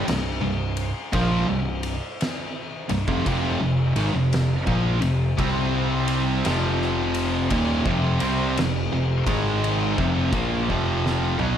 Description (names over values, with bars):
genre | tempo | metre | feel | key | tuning
stoner and doom metal | 56 BPM | 4/4 | swing 65% on 8ths | unclear | A4 = 439 Hz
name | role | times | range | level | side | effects
high-gain distorted guitar | riff | 0.0-11.6 s | C2 to C4 | -25 LUFS | equal | distortion
thick fuzz guitar | riff | 0.0-11.6 s | C2 to C4 | -25 LUFS | equal | distortion
fingered electric bass | bass | 0.0-11.6 s | C1 to C2 | -28 LUFS | equal | overdrive
oversized low-tuned drum kit | drums | 0.1-11.6 s | kick drum, ride cymbal, snare drum, toms | -28 LUFS | equal | none
room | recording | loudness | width
light reverb, studio ambience | none | -21 LUFS | side -9 dB against mid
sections
0.0-11.6 A section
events
drum fill 10.7-11.6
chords
0.0 C5; 3.3 F5; 5.4 C5; 6.4 F5